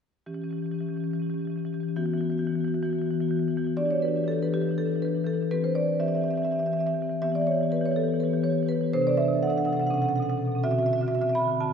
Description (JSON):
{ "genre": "classical, contemporary piece for solo marimba", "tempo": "245 BPM (eighths)", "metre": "7/8", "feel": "rubato", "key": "E minor", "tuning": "A4 = 440 Hz", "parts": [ { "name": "marimba with medium mallets", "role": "solo", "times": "0.3-11.7 s", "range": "B2 to B5", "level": "-24 LUFS", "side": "left 1 dB", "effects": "none" } ], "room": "wet church reverb, RT60 2.7 s", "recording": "heard from further back in the room", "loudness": "-24 LUFS", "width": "side -7 dB against mid", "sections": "0.3-3.8 A section; 3.8-11.7 B section", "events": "none", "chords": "0.3 Em6; 2.0 Esus2; 3.8 Em7; 5.5 C/E; 7.2 Em; 8.9 Csus2; 9.9 Bsus2; 10.6 D9" }